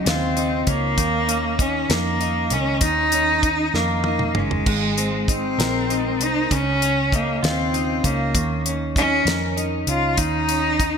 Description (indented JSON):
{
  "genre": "six-eight pop ballad",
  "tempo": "65 BPM (dotted quarters)",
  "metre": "6/8",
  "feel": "straight",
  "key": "unclear",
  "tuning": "A4 = 440 Hz",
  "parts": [
    { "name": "rich cello", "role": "melody", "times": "0.0-11.0 s", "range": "Gb3 to F4", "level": "-21 LUFS", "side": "equal", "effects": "ping-pong delay" },
    { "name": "direct-recorded clean electric guitar", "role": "accompaniment", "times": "0.0-11.0 s", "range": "Db3 to Bb4", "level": "-26 LUFS", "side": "equal", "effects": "double-tracked left and right" },
    { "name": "vintage muted fingered electric bass", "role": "bass", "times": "0.0-11.0 s", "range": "Gb1 to F2", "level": "-26 LUFS", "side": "equal", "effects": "none" },
    { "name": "damped 70s drum kit", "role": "drums", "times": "0.1-10.9 s", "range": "crash cymbal, hi-hat, kick drum, snare drum, toms", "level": "-23 LUFS", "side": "equal", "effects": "none" }
  ],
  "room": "moderate lush hall reverb, RT60 1.8 s",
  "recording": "bright 1980s-style digital production",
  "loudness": "-18 LUFS",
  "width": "side -6 dB against mid",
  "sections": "0.0-11.0 A section",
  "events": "drum fill 3.7-4.7",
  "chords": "0.0 Dbadd9; 1.0 Eb7(no3); 4.7 Abadd9; 6.5 Dbadd9; 8.3 Eb7(no3)",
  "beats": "0.06 | 0.98 1.90 | 2.82 3.74 | 4.67 5.59 | 6.51 7.43 | 8.35 9.26 | 10.18"
}